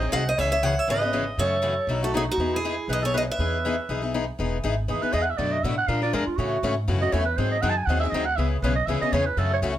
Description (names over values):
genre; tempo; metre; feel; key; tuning
acoustic string swing (jazz manouche); 240 BPM; 4/4; swing 56% on 8ths; E major; A4 = 440 Hz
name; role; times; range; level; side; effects
picked acoustic archtop guitar; melody; 0.0-4.1 s; F#4 to F#5; -26 LUFS; right 1 dB; none
growling clarinet; second line; 0.0-9.6 s; D#4 to A5; -28 LUFS; right 5 dB; none
picked acoustic archtop guitar; accompaniment; 0.0-9.7 s; B2 to A#4; -27 LUFS; left 4 dB; none
upright bass; bass; 0.0-9.8 s; E1 to A#2; -27 LUFS; equal; none
room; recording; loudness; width
moderate studio reverb, RT60 0.5 s; none; -22 LUFS; side -12 dB against mid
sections
0.0-4.4 A section; 4.4-9.8 B section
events
clarinet solo 4.4-9.8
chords
0.4 C#m7; 1.4 F#m7; 1.9 B7; 2.4 Emaj7; 5.4 Bm7; 5.9 A#7; 6.4 A6; 7.4 G#7; 8.4 C#m7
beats
0.13 | 0.38 0.63 0.88 1.13 | 1.38 1.63 1.88 2.13 | 2.38 2.63 2.88 3.13 | 3.38 3.63 3.88 4.13 | 4.38 4.63 4.88 5.13 | 5.38 5.63 5.88 6.13 | 6.38 6.63 6.88 7.13 | 7.38 7.63 7.88 8.13 | 8.38 8.63 8.88 9.13 | 9.38 9.63